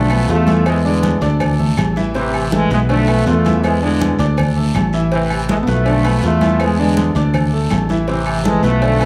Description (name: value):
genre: latin, salsa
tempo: 162 BPM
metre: 4/4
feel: straight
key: A harmonic minor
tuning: A4 = 440 Hz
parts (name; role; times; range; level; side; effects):
- bright trombone section; melody; 0.0-9.1 s; C3 to F4; -20 LUFS; equal; none
- bright concert grand piano; accompaniment; 0.0-9.1 s; C3 to D6; -24 LUFS; equal; none
- fingered electric bass; bass; 0.0-9.1 s; A1 to E2; -19 LUFS; equal; none
- agogo bells and timbales; percussion; 0.1-9.1 s; none; -29 LUFS; equal; none
- claves; percussion; 0.1-9.1 s; none; -34 LUFS; equal; none
- congas; percussion; 0.1-9.1 s; none; -24 LUFS; equal; none
- cowbell; percussion; 0.1-9.1 s; none; -31 LUFS; equal; none
- guiro; percussion; 0.3-9.1 s; none; -36 LUFS; equal; none
room: light reverb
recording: studio reverb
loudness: -16 LUFS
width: mono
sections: 0.0-9.1 A section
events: none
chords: 0.0 B7(b5, no3); 0.7 E7; 1.4 D5; 2.1 Am; 2.9 Bm7b5; 3.6 E7; 4.4 D5; 5.1 Am; 5.9 Bm7b5; 6.6 E7; 7.3 D5; 8.1 Am